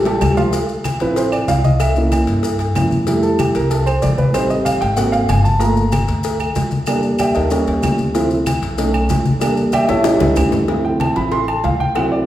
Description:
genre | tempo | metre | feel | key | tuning
Afro-Cuban jazz | 189 BPM | 4/4 | straight | D minor | A4 = 442 Hz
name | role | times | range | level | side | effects
upright bass | bass | 0.0-12.3 s | G1 to G2 | -21 LUFS | equal | none
dark baby grand piano | accompaniment | 0.1-12.3 s | F3 to C6 | -17 LUFS | right 1 dB | none
congas | percussion | 0.1-12.3 s | none | -23 LUFS | left 2 dB | none
cowbell and bongos | percussion | 0.1-12.1 s | none | -25 LUFS | left 2 dB | none
maracas | percussion | 0.1-10.7 s | none | -33 LUFS | left 4 dB | none
timbales and agogo bells | percussion | 0.1-12.1 s | none | -24 LUFS | right 1 dB | none
claves | percussion | 0.2-12.1 s | none | -32 LUFS | right 4 dB | none
room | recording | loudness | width
wet recital hall reverb, RT60 1.3 s | recorded in a church or concert hall | -14 LUFS | side -13 dB against mid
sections
0.5-10.7 A section; 10.7-12.3 A section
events
drum fill 0.0-0.5, 9.9-10.7; grand piano solo 0.5-12.3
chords
0.0 Dmadd11/A; 0.5 Dm7; 1.8 C7b9; 3.1 Fmaj7; 4.3 Am7b5; 5.0 G#9; 5.6 Gm7; 6.9 Em7b5; 7.5 Eb7#11; 8.1 Dm7; 8.8 B7; 9.4 Em7b5; 10.1 A7; 10.7 Dm7

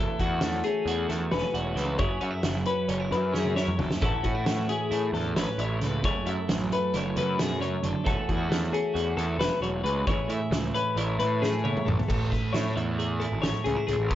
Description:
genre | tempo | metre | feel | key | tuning
math rock and midwest emo | 268 BPM (eighths) | 9/8 | straight | A major | A4 = 442 Hz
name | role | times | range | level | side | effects
twelve-string electric guitar | accompaniment | 0.0-14.2 s | F#2 to G#4 | -30 LUFS | right 4 dB | none
twelve-string electric guitar | arpeggios | 0.0-14.2 s | F#4 to E5 | -30 LUFS | left 5 dB | tape echo
fuzz picked electric bass | bass | 0.0-14.2 s | E1 to A2 | -31 LUFS | equal | overdrive
loose indie drum kit | drums | 0.2-14.2 s | crash cymbal, hi-hat, kick drum, snare drum, toms | -31 LUFS | equal | none
room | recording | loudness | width
light reverb | worn, warbling old tape, cassette tape, warbly pitch drift, nothing above 7.6 kHz | -25 LUFS | side -12 dB against mid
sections
0.0-12.1 A section; 12.1-14.2 B section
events
drum fill 3.3-4.0, 11.4-12.1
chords
0.0 A69/E; 2.0 F#9sus4; 4.0 A69; 6.0 F#m9; 8.1 A69/E; 10.1 Amaj9; 12.1 Amaj7

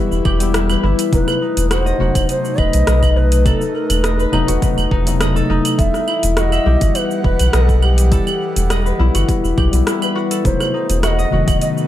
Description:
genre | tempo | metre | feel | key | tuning
organic downtempo | 103 BPM | 4/4 | straight | E harmonic minor | A4 = 440 Hz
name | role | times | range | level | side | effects
mellow hollow Native American-style cedar flute | melody | 0.0-11.7 s | G4 to E5 | -23 LUFS | right 1 dB | analog delay
tine electric piano | accompaniment | 0.0-11.9 s | C3 to E4 | -23 LUFS | left 2 dB | medium stereo tremolo, sidechain pumping, analog delay
airy breathy pad | sustained chords | 0.0-11.9 s | D#3 to F#5 | -26 LUFS | equal | chorus, sidechain pumping
concert harp | arpeggios | 0.0-11.9 s | D#4 to E5 | -22 LUFS | left 4 dB | analog delay
round analog bass | bass | 0.1-11.6 s | E1 to B1 | -16 LUFS | equal | none
deep house drum kit | drums | 0.1-11.9 s | cabasa, claves, hi-hat, rim click | -22 LUFS | right 2 dB | overdrive, analog delay
electronic kick drum | drums | 0.3-11.6 s | none | -19 LUFS | equal | overdrive
room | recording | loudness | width
little or no reverb | echo-heavy mix | -13 LUFS | side -12 dB against mid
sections
0.0-11.9 A section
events
none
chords
0.0 Em; 1.1 B7b9/E; 5.8 Em; 10.4 B7b9/E

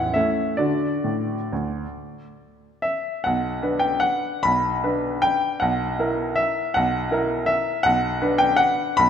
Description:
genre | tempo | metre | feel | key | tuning
classical, piano waltz | 127-171 BPM | 3/4 | rubato | D major, B minor from 3.3 s | A4 = 440 Hz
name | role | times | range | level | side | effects
bright baby grand piano | solo | 0.0-9.1 s | A0 to B5 | -20 LUFS | left 1 dB | none
room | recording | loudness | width
moderate concert hall reverb, RT60 2.1 s | none | -20 LUFS | side -8 dB against mid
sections
0.0-3.3 A section; 3.3-9.1 B section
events
none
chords
0.0 A7; 0.6 D; 3.3 Bm; 5.6 F#7/B; 7.9 Bm

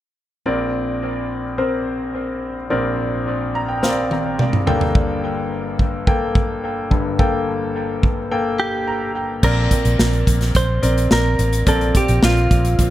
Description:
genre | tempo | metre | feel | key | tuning
piano-driven pop | 107 BPM | 4/4 | straight | Bb major | A4 = 440 Hz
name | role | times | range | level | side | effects
clear concert grand piano | accompaniment | 0.5-12.9 s | G1 to Bb5 | -21 LUFS | left 1 dB | dub echo
modern studio drum kit | drums | 3.8-12.9 s | crash cymbal, hi-hat, kick drum, snare drum, toms | -18 LUFS | equal | none
direct-recorded clean electric guitar | melody | 8.6-12.9 s | F4 to C5 | -21 LUFS | right 1 dB | none
vintage muted fingered electric bass | bass | 9.4-12.9 s | A1 to Bb1 | -18 LUFS | equal | none
room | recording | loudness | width
light reverb, small room ambience | echo-heavy mix | -16 LUFS | side -14 dB against mid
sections
0.5-9.4 A section; 9.4-12.9 B section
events
grand piano fill 3.3-5.0, 8.6-9.4; drum fill 3.8-5.0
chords
0.5 Bbadd9; 4.7 Gmadd9; 9.4 Bbadd9

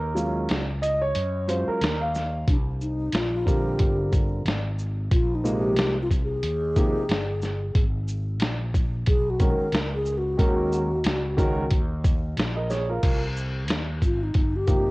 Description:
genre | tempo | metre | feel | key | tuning
hip hop, jazz-hop | 91 BPM | 4/4 | swing 58% on 16ths | unclear | A4 = 438 Hz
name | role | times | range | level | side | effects
dark baby grand piano | accompaniment | 0.0-14.9 s | C3 to F5 | -27 LUFS | right 1 dB | cassette tape
fretless electric bass | bass | 0.0-14.9 s | G1 to Gb2 | -28 LUFS | equal | tube saturation
boom bap sampler-style drum kit | drums | 0.2-14.9 s | crash cymbal, hi-hat, kick drum, shaker, snare drum | -24 LUFS | equal | vintage 12-bit sampler grit, cassette tape
breathy mellow wooden-headed alto flute | melody | 2.5-14.9 s | D4 to Bb4 | -27 LUFS | left 1 dB | cassette tape
room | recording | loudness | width
light reverb, digital ambience | home recording on cassette | -22 LUFS | side -22 dB against mid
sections
0.0-2.5 A section; 2.5-13.0 A section; 13.0-14.9 B section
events
break 0.0-2.5; grand piano solo 0.0-2.5; alto flute solo 2.5-13.0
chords
0.0 Ebm11; 2.5 C9sus4; 5.1 Bb9sus4; 7.8 Abmadd9; 10.4 Ebm7; 13.0 Bb9sus4

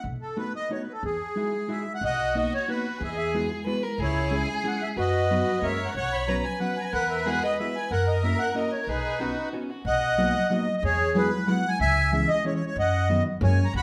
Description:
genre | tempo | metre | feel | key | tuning
musette waltz | 184 BPM | 3/4 | straight | B major | A4 = 441 Hz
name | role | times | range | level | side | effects
accordion | melody | 0.0-13.8 s | D#4 to B5 | -28 LUFS | equal | light tremolo tuning
upright bass | bass | 0.0-13.8 s | B1 to F#2 | -30 LUFS | equal | none
hollow-body jazz guitar | accompaniment | 0.4-13.6 s | D#3 to G#4 | -32 LUFS | equal | none
rich violin | second line | 2.0-9.9, 13.7-13.8 s | C#4 to C#5 | -35 LUFS | equal | none
room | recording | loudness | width
wet large studio reverb, RT60 1.0 s | band playing live in one room | -26 LUFS | mono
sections
0.0-2.0 A section; 2.0-9.9 B section; 9.9-13.8 B section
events
none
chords
0.0 B7; 1.0 Emaj9; 2.0 Bmaj7; 3.0 Eadd9; 4.0 C#m; 5.0 B/F#; 5.6 F#add9; 6.0 Bsus2; 6.9 Eadd9; 7.9 F#7; 8.9 Badd9; 9.9 Bmaj7; 10.8 Eadd9; 11.8 C#m; 12.8 B/F#; 13.4 F#add9

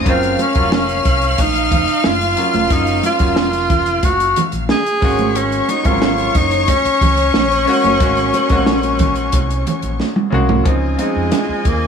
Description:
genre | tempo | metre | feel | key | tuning
lush 1970s-style soul | 90 BPM | 4/4 | straight | unclear | A4 = 436 Hz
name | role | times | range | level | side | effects
warm studio string section | second line | 0.0-11.9 s | F4 to F6 | -21 LUFS | left 3 dB | none
bright grand piano | accompaniment | 0.0-11.9 s | C3 to Gb4 | -22 LUFS | left 2 dB | none
overdriven fingered electric bass | bass | 0.0-11.9 s | F1 to F2 | -21 LUFS | equal | none
breathy tenor saxophone | melody | 0.1-11.9 s | Ab3 to Ab4 | -18 LUFS | equal | none
compact cocktail drum kit | drums | 0.1-11.8 s | hi-hat, kick drum, snare drum, toms | -19 LUFS | equal | none
congas | percussion | 0.4-11.5 s | none | -25 LUFS | right 7 dB | none
room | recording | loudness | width
light reverb, studio ambience | none | -13 LUFS | side -6 dB against mid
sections
0.0-10.7 A section; 10.7-11.9 B section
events
drum fill 10.0-10.7; tenor saxophone solo 10.7-11.9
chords
0.1 Gbmaj7; 5.0 Ab9sus4; 10.7 Dbmaj9

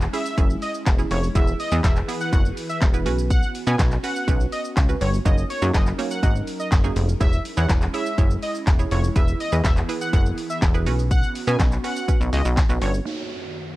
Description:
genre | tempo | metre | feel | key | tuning
dance-pop | 123 BPM | 4/4 | straight | B major | A4 = 439 Hz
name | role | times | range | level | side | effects
hollow square pluck | accompaniment | 0.0-13.8 s | A#3 to D#5 | -30 LUFS | right 6 dB | chorus, sidechain pumping, low-pass filter
airy breathy pad | sustained chords | 0.1-13.8 s | F#2 to B4 | -33 LUFS | equal | chorus, sidechain pumping, low-pass filter
plucky analog bass | bass | 0.0-13.0 s | E1 to B2 | -22 LUFS | equal | sidechain pumping
house drum kit | drums | 0.0-13.1 s | handclaps, hi-hat, kick drum, shaker, snare drum | -21 LUFS | equal | none
octave-doubled lead | melody | 0.1-12.9 s | C#5 to G#5 | -29 LUFS | equal | chorus, slapback echo
downlifter | sound effects | 13.1-13.8 s | none | -34 LUFS | right 1 dB | none
room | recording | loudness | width
little or no reverb | none | -19 LUFS | side -18 dB against mid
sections
0.0-13.1 A section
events
drop 0.0-13.1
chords
0.0 C#m; 1.4 E; 3.1 Bsus2; 5.3 F#6; 7.2 C#m/E; 9.2 E; 10.9 Bsus2; 13.1 F#6

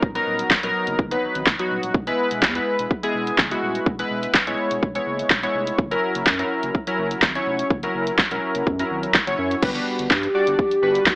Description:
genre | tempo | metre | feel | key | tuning
dance-pop | 125 BPM | 4/4 | straight | unclear | A4 = 441 Hz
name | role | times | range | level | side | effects
warm analog keys | accompaniment | 0.0-11.2 s | F#3 to D5 | -23 LUFS | equal | chorus, sidechain pumping
saturated sub bass | bass | 0.0-11.2 s | D#1 to G2 | -31 LUFS | equal | sidechain pumping
house drum kit | drums | 0.0-11.2 s | crash cymbal, handclaps, hi-hat, kick drum, snare drum | -20 LUFS | equal | none
hollow clarinet-like synth lead | melody | 9.6-11.2 s | B3 to G4 | -20 LUFS | equal | chorus
room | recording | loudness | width
light reverb, digital ambience | AM radio sound | -19 LUFS | side -22 dB against mid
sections
0.0-9.6 A section; 9.6-11.2 B section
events
none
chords
0.0 Bmaj7; 1.9 E; 5.8 F#7; 9.6 Gmaj7

